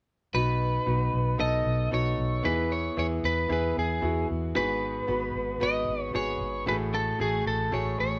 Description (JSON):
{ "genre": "piano-driven pop", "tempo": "114 BPM", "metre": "4/4", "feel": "straight", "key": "B mixolydian", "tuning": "A4 = 440 Hz", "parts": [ { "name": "lightly driven lead guitar", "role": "melody", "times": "0.3-8.2 s", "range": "G#4 to D#5", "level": "-31 LUFS", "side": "equal", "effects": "none" }, { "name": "bright upright piano", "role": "accompaniment", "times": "0.3-8.2 s", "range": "G#2 to B4", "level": "-33 LUFS", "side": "equal", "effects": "none" }, { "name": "vintage muted fingered electric bass", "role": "bass", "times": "0.3-8.2 s", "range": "G#1 to E2", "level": "-33 LUFS", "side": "equal", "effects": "none" } ], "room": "moderate studio reverb, RT60 0.9 s", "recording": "band playing live in one room", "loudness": "-28 LUFS", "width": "mono", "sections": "0.3-8.2 A section", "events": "none", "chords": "0.3 B; 2.4 E; 4.6 G#m7; 6.7 F#madd9/A" }